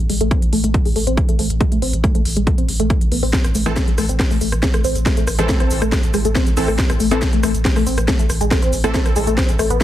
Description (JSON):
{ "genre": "driving peak-time techno", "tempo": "139 BPM", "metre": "4/4", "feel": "straight", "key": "A harmonic minor", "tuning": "A4 = 440 Hz", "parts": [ { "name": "saturated sub bass", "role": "bass", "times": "0.0-9.8 s", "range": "A1", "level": "-22 LUFS", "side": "equal", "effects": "tube saturation, sidechain pumping, low-pass filter" }, { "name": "tight sequenced synth", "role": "riff", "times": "0.1-9.8 s", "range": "G#3 to C4", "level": "-21 LUFS", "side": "left 1 dB", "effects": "chorus, phaser, sidechain pumping, ping-pong delay" }, { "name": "techno drum kit", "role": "drums", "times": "0.1-9.8 s", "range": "hi-hat, rim click, shaker, snare drum", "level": "-23 LUFS", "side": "equal", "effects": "overdrive, sidechain pumping on hats, sidechain pumping on perc" }, { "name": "electronic kick drum", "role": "drums", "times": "0.3-9.8 s", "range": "none", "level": "-18 LUFS", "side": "equal", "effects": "overdrive" }, { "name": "rave stab", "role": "stabs", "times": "3.7-9.8 s", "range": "E3 to A4", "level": "-24 LUFS", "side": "right 1 dB", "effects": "chorus, built-in reverb, sidechain pumping, ping-pong delay" } ], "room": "light reverb, digital ambience", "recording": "heavily compressed radio sound, multiband compression", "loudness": "-15 LUFS", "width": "side -12 dB against mid", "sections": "0.0-9.8 A section", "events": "filter sweep on synth arpeggio sound 0.0-9.8", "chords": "0.0 Am", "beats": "0.31 0.74 1.17 | 1.61 2.04 2.47 2.90 | 3.33 3.76 4.20 4.63 | 5.06 5.49 5.92 6.35 | 6.79 7.22 7.65 8.08 | 8.51 8.94 9.38 9.81" }